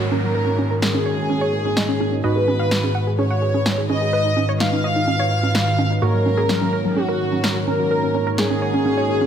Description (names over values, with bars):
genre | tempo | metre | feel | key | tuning
progressive house | 127 BPM | 4/4 | straight | unclear | A4 = 440 Hz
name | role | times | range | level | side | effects
wide unison lead | melody | 0.0-9.3 s | F#4 to E#5 | -23 LUFS | left 1 dB | digital delay
warm symphonic violin section | second line | 0.0-9.3 s | F#4 to E#5 | -28 LUFS | equal | dub echo
lush unison pad | sustained chords | 0.0-9.3 s | G#2 to E#5 | -25 LUFS | left 1 dB | chorus
glassy wavetable pluck | arpeggios | 0.0-9.3 s | F#3 to G#5 | -26 LUFS | left 1 dB | chorus, cassette tape, dub echo
chorused polysynth | stabs | 0.0-9.3 s | G#2 to C#5 | -24 LUFS | right 2 dB | vintage 12-bit sampler grit
downlifter | sound effects | 0.0-2.2 s | none | -35 LUFS | equal | none
congas | percussion | 0.1-9.3 s | none | -26 LUFS | right 6 dB | none
electronic snare drum | drums | 0.8-8.5 s | none | -23 LUFS | equal | overdrive
room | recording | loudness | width
light reverb, digital ambience | none | -17 LUFS | side -8 dB against mid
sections
0.0-9.3 A section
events
filter sweep on analog synth pad 0.0-9.3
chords
0.0 F#6/G#; 2.2 G#m7; 6.0 F#6/G#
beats
| 0.35 0.82 1.30 1.77 | 2.24 2.71 3.19 3.66 | 4.13 4.60 5.08 5.55 | 6.02 6.49 6.97 7.44 | 7.91 8.38 8.86